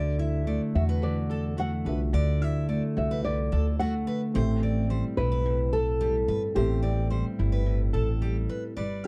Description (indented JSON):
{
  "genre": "acoustic pop",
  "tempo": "108 BPM",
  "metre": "4/4",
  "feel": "straight",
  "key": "unclear",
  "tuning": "A4 = 440 Hz",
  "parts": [
    { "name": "felt-muted upright piano", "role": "accompaniment", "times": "0.0-8.8 s", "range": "B3 to E5", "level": "-42 LUFS", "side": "equal", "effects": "none" },
    { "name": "fingerpicked plugged-in steel-string acoustic guitar", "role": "accompaniment", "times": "0.0-9.1 s", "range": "A2 to B4", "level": "-33 LUFS", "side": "equal", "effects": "none" },
    { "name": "picked steel-string acoustic guitar", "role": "arpeggios", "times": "0.0-9.1 s", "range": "F#4 to E5", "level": "-39 LUFS", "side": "equal", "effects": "none" },
    { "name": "upright bass", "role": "bass", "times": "0.0-9.1 s", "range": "G1 to E2", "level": "-30 LUFS", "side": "equal", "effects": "none" },
    { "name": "nylon-string guitar", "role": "melody", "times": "0.8-9.1 s", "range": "G4 to F#5", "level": "-33 LUFS", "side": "equal", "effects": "none" }
  ],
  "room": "light reverb",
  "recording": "dark, warm production",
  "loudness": "-27 LUFS",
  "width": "mono",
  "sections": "0.0-8.8 A section",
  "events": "none",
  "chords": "0.0 Dadd9; 4.4 Am7"
}